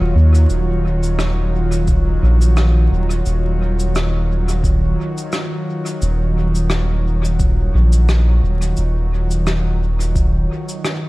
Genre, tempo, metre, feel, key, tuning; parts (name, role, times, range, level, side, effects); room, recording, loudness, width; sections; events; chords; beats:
ambient dub; 87 BPM; 4/4; swing 56% on 16ths; Eb minor; A4 = 440 Hz
airy breathy pad; sustained chords; 0.0-11.1 s; Eb3 to Db5; -22 LUFS; equal; chorus
soft dub sub bass; bass; 0.0-10.5 s; Eb1 to Eb2; -15 LUFS; equal; tube saturation
cabasa and rim click; drums; 0.3-11.0 s; -26 LUFS; equal; dub echo
electronic kick drum; drums; 1.9-10.3 s; -19 LUFS; equal
light reverb, small room ambience; dark, warm production, vinyl crackle; -14 LUFS; side -20 dB against mid
0.0-11.1 A section
0.0 Ebm9
| 0.50 1.19 1.88 2.57 | 3.26 3.95 4.64 5.33 | 6.02 6.71 7.40 8.09 | 8.78 9.46 10.15 10.85